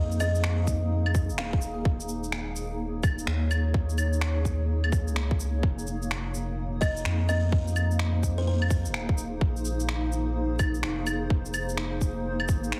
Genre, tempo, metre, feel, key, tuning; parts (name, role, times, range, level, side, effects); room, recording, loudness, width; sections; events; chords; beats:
future garage; 127 BPM; 4/4; swing 64% on 16ths; F minor; A4 = 440 Hz
granular cloud pad; sustained chords; 0.0-12.8 s; Bb3 to Db5; -36 LUFS; equal; built-in reverb, vintage 12-bit sampler grit, sidechain pumping
warm sub bass; bass; 0.0-12.7 s; Eb1 to F2; -30 LUFS; equal; tube saturation, sidechain pumping
electronic shaker, claves and finger snaps; drums; 0.1-12.8 s; -36 LUFS; equal; overdrive
buzzing kalimba; melody; 0.2-1.8, 6.8-8.6 s; C5 to F5; -38 LUFS; equal; delay
electronic kick drum; drums; 0.7-12.6 s; -28 LUFS; equal; overdrive
light reverb, digital ambience; heavily compressed radio sound, vinyl crackle; -27 LUFS; mono
0.0-12.8 A section
0.0 Fm7; 1.9 Eb5; 5.6 Fm7; 9.4 Bb9sus4
0.44 0.91 1.38 | 1.85 2.33 2.80 3.27 | 3.74 4.22 4.69 5.16 | 5.63 6.11 6.58 7.05 | 7.52 8.00 8.47 8.94 | 9.41 9.89 10.36 10.83 | 11.30 11.78 12.25 12.72